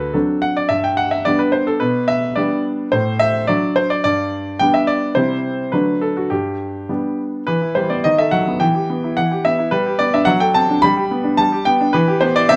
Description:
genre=classical-period piano sonatina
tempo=107 BPM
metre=2/4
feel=straight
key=G major, E minor from 7.5 s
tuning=A4 = 439 Hz
part: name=clear grand piano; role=solo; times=0.0-12.6 s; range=D2 to B5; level=-18 LUFS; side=equal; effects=none
room=moderate stone room reverb, RT60 1.2 s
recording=close, detailed microphones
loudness=-18 LUFS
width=mono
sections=0.0-7.5 A section; 7.5-12.6 B section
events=none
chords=0.0 D7; 0.7 G; 1.8 G/B; 2.9 D/A; 4.0 G; 5.2 C; 5.7 D; 6.3 G; 7.5 Em; 8.0 B7/D#; 8.6 Em; 9.7 G; 10.3 D7/F#; 10.8 G; 11.9 Em

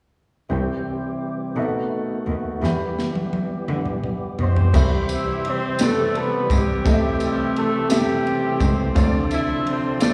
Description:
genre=slow gospel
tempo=57 BPM (dotted quarters)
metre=6/8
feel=straight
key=C major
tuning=A4 = 440 Hz
part: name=warm concert grand piano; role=accompaniment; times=0.5-10.1 s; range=A2 to B5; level=-28 LUFS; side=equal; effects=slapback echo
part: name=percussive tonewheel organ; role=sustained chords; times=0.5-10.1 s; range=C3 to A4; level=-30 LUFS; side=equal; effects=slow rotary speaker, overdrive, chorus vibrato
part: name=rich cello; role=bass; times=0.5-9.0 s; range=C2 to D3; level=-26 LUFS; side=equal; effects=none
part: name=tight funk drum kit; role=drums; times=2.6-10.1 s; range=crash cymbal, kick drum, ride cymbal, snare drum, toms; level=-24 LUFS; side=equal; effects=none
part: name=warm horn section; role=melody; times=4.4-10.1 s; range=G3 to E5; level=-26 LUFS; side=equal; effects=slapback echo
part: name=tambourine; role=percussion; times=4.7-10.1 s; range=none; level=-39 LUFS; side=equal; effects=none
room=light reverb, small room ambience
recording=live gig heard through the venue's PA, recital hall reverb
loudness=-22 LUFS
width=mono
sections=0.5-4.7 A section; 4.7-10.1 B section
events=drum fill 2.6-4.7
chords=0.5 C; 1.6 B7; 2.6 Em; 4.7 Cmaj7; 6.9 Am7; 9.0 Dm7

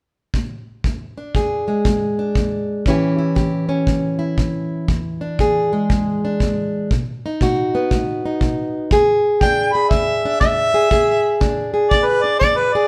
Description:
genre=acoustic country blues, solo or duo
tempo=119 BPM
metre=4/4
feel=swing 64% on 8ths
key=E mixolydian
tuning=A4 = 440 Hz
part: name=kick drum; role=drums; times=0.3-12.6 s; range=none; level=-24 LUFS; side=equal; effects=none
part: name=fingerpicked plugged-in steel-string acoustic guitar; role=accompaniment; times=0.8-12.9 s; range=E2 to G#4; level=-21 LUFS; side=equal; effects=none
part: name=mellow harmonica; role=melody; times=9.4-12.9 s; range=B4 to B5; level=-19 LUFS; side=equal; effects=none
room=moderate stone room reverb, RT60 1.0 s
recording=band playing live in one room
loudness=-18 LUFS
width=mono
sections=0.8-8.9 A section; 8.9-12.9 B section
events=none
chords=0.0 N.C.; 0.8 E7; 2.9 A7; 4.9 E7; 6.9 B; 8.9 E7

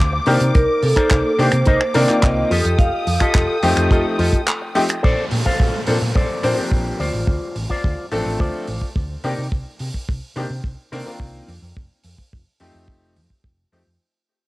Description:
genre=nu-disco, nu disco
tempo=107 BPM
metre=4/4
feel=straight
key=F mixolydian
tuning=A4 = 440 Hz
part: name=muted symphonic string section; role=sustained chords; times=0.0-5.0 s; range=Bb3 to Eb6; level=-25 LUFS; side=left 1 dB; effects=sidechain pumping, cassette tape
part: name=hollow-body short-scale fingered electric bass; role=bass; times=0.0-14.0 s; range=F1 to C3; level=-22 LUFS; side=equal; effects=none
part: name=electric guitar with an envelope filter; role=riff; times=0.1-9.5 s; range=Eb4 to F5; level=-24 LUFS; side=left 1 dB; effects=analog chorus, cassette tape
part: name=bright grand piano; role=accompaniment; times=0.3-13.8 s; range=Eb3 to C5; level=-21 LUFS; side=left 1 dB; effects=sidechain pumping, cassette tape, tape echo
part: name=damped 70s drum kit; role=drums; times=0.3-13.8 s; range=finger snaps, handclaps, hi-hat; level=-27 LUFS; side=right 1 dB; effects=cassette tape
part: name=vibraphone with medium mallets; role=melody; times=0.5-3.3 s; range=A4 to F5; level=-20 LUFS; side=right 1 dB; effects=cassette tape
part: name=kick drum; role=drums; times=0.6-13.6 s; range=none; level=-17 LUFS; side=equal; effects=cassette tape
part: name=downlifter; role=sound effects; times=5.0-9.5 s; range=none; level=-31 LUFS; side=equal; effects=none
room=light reverb, small room ambience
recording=home recording on cassette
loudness=-16 LUFS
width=side -19 dB against mid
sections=0.0-5.0 A section; 5.0-14.0 B section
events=drop 0.0-5.0; break 4.5-5.0; fade-out 5.0-14.0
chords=0.3 Cm9; 2.5 F9; 5.0 Bbmaj9; 7.0 Dm7; 9.2 Cm9; 11.5 F9

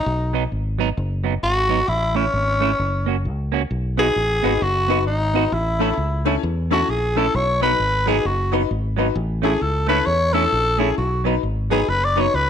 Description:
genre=ska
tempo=132 BPM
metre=4/4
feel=swing 61% on 8ths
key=B mixolydian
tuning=A4 = 442 Hz
part: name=growling tenor saxophone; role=melody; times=0.0-12.5 s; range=C#4 to D5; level=-20 LUFS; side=left 1 dB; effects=none
part: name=fingered electric bass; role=bass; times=0.1-12.5 s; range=F#1 to E2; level=-23 LUFS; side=equal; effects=none
part: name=semi-hollow electric guitar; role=accompaniment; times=0.3-12.3 s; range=F#3 to F#4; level=-25 LUFS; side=right 13 dB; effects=none
part: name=bright upright piano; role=stabs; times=4.0-12.3 s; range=C#4 to B4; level=-25 LUFS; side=left 13 dB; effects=none
room=light reverb, small room ambience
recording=1960s-style stereo with parts hard left and right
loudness=-18 LUFS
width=side -8 dB against mid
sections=0.0-12.5 A section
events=tenor saxophone solo 0.0-12.5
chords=0.1 B; 1.9 A; 2.8 F#; 3.7 B; 5.5 A; 7.3 B; 9.2 A; 11.0 B

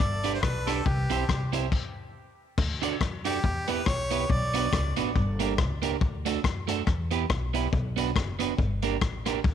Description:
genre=ska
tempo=140 BPM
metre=4/4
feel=swing 57% on 8ths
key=D major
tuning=A4 = 441 Hz
part: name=clear harmonica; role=melody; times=0.0-5.0 s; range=G4 to D5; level=-32 LUFS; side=equal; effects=tape echo
part: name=upright bass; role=bass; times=0.0-9.5 s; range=F#1 to F#2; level=-31 LUFS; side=left 1 dB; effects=none
part: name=crunchy breakbeat drum kit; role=drums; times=0.0-9.5 s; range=crash cymbal, hi-hat, kick drum, rim click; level=-28 LUFS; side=left 3 dB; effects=none
part: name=electric guitar at the edge of break-up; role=accompaniment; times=0.2-9.4 s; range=A3 to D5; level=-31 LUFS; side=right 14 dB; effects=none
room=studio reverb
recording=1960s-style stereo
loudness=-25 LUFS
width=side -9 dB against mid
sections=0.0-2.6 A section; 2.6-9.5 B section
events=stop 1.7-2.6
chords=0.0 G; 0.9 C; 1.7 N.C.; 2.6 D; 3.4 Em; 4.3 Bm; 5.2 Gm; 6.0 D; 6.9 Em; 7.7 Bm; 8.6 Gm

